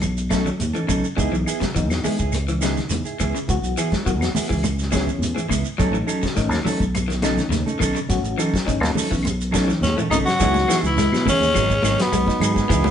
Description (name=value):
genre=afrobeat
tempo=104 BPM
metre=4/4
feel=straight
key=C# minor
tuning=A4 = 440 Hz
part: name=clean electric guitar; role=arpeggios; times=0.0-12.9 s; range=C#3 to A3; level=-27 LUFS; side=left 2 dB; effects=none
part: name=fingered electric bass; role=bass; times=0.0-12.9 s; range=G#1 to B2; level=-24 LUFS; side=equal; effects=none
part: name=warm soul drum kit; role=drums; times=0.0-12.8 s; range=hi-hat, kick drum, snare drum, toms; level=-26 LUFS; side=equal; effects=none
part: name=claves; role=percussion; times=0.0-12.6 s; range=none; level=-36 LUFS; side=left 3 dB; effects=none
part: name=congas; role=percussion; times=0.0-12.9 s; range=none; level=-28 LUFS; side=equal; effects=none
part: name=shekere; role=percussion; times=0.0-12.9 s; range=none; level=-30 LUFS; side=right 4 dB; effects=none
part: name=mellow electric guitar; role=stabs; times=0.3-12.9 s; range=F#3 to A4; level=-27 LUFS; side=right 3 dB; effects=none
part: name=bright reed electric piano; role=accompaniment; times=1.2-12.9 s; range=E3 to F#4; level=-29 LUFS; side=left 4 dB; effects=fast tremolo
part: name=raspy tenor saxophone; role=melody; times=9.8-12.9 s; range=B3 to F#4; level=-21 LUFS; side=left 1 dB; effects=none
part: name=trombone with bucket mute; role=second line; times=9.8-12.9 s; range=B2 to F#3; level=-29 LUFS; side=left 1 dB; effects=none
room=wet studio reverb, RT60 0.9 s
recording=band playing live in one room, nothing above 10.9 kHz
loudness=-18 LUFS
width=side -9 dB against mid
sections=0.0-10.4 A section; 10.4-12.9 B section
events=drum fill 9.8-10.4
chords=0.0 B9; 1.2 C#m7; 5.8 B9; 10.4 C#m7; 11.5 G#m7